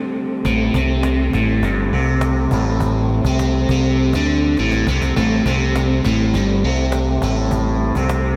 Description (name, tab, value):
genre	psychedelic rock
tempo	102 BPM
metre	4/4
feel	straight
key	A minor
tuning	A4 = 440 Hz
part	combo organ	sustained chords	0.0-8.4 s	G3 to C4	-25 LUFS	equal	subtle chorus
part	cajon	drums	0.2-8.2 s	none	-31 LUFS	equal	none
part	biting overdriven guitar	riff	0.5-8.4 s	G2 to D3	-22 LUFS	equal	phaser
part	growling fingered electric bass	bass	0.5-8.4 s	G1 to D2	-22 LUFS	equal	overdrive
room	wet cathedral reverb, RT60 4.6 s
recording	dreamy mix soaked in reverb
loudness	-18 LUFS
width	mono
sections	0.0-8.4 A section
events	drum fill 4.6-5.2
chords	0.0 Am7